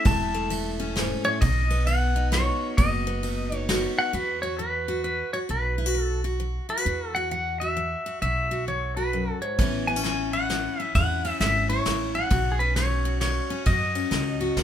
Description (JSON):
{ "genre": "honky-tonk and classic country", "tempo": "132 BPM", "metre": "3/4", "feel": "swing 63% on 8ths", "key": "E major", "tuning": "A4 = 440 Hz", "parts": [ { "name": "pedal steel guitar", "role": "melody", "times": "0.0-14.5 s", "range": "G#4 to A5", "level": "-27 LUFS", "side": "left 1 dB", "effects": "none" }, { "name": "picked steel-string acoustic guitar", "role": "accompaniment", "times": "0.0-14.6 s", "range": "E2 to F#4", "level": "-30 LUFS", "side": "left 2 dB", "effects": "none" }, { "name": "upright bass", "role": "bass", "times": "0.1-14.6 s", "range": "E1 to F#2", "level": "-28 LUFS", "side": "right 1 dB", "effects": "none" }, { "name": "soft brush drum kit", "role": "drums", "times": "0.1-3.8, 9.6-14.6 s", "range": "kick drum, ride cymbal, snare drum", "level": "-28 LUFS", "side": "equal", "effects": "none" } ], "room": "little or no reverb", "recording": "minimal, uncompressed stereo recording", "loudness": "-23 LUFS", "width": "side -10 dB against mid", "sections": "0.0-4.1 A section; 4.1-14.6 B section", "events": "none", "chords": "0.0 A; 1.4 B; 4.1 Esus2; 9.6 Aadd9; 12.3 Badd9" }